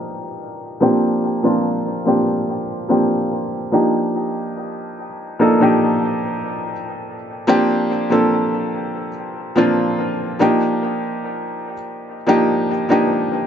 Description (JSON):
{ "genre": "R&B", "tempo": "72 BPM", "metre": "4/4", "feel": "straight", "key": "Bb major", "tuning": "A4 = 440 Hz", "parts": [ { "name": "felt-muted upright piano", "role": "solo", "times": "0.0-13.5 s", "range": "F3 to Bb4", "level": "-17 LUFS", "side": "equal", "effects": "dub echo" } ], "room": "light reverb, studio reverb", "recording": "echo-heavy mix, low-pass filter, nothing above 7.5 kHz", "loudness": "-16 LUFS", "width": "side -8 dB against mid", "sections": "0.0-7.5 A section; 7.5-13.5 B section", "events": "filter sweep 0.0-7.5", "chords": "0.0 Ebmaj9; 0.8 Bb69; 3.7 Ebmaj9; 7.5 Bb69; 10.4 Ebmaj9", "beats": "| 0.81 1.65 2.48 3.31 | 4.15 4.98 5.81 6.65 | 7.48 8.31 9.15 9.98 | 10.81 11.65 12.48 13.31" }